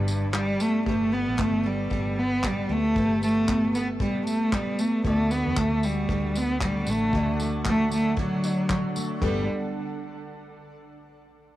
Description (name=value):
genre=acoustic pop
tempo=115 BPM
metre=4/4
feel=swing 60% on 16ths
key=G major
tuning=A4 = 445 Hz
part: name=warm cello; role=melody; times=0.0-9.5 s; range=G2 to B3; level=-24 LUFS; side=right 1 dB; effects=cassette tape, tape echo
part: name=felt-muted upright piano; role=accompaniment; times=0.0-9.5 s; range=G3 to D5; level=-40 LUFS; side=left 5 dB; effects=none
part: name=picked steel-string acoustic guitar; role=accompaniment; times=0.0-9.9 s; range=G2 to A4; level=-31 LUFS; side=left 1 dB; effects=double-tracked left and right
part: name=granular cloud pad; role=sustained chords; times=0.0-0.8, 6.4-9.5 s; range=D3 to D6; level=-40 LUFS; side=right 2 dB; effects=built-in reverb, plate reverb
part: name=vintage muted fingered electric bass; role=bass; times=0.0-9.5 s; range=G1 to E2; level=-32 LUFS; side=equal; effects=none
part: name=soft brush drum kit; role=drums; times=0.1-9.4 s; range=handclaps, kick drum, tambourine, toms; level=-31 LUFS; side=equal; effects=cassette tape
room=wet booth ambience, RT60 0.2 s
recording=home recording on cassette, faint mains hum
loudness=-22 LUFS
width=side -14 dB against mid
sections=0.9-9.2 A section; 9.2-11.3 B section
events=none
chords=0.0 G; 0.9 Gadd9; 5.0 D; 9.2 Gadd9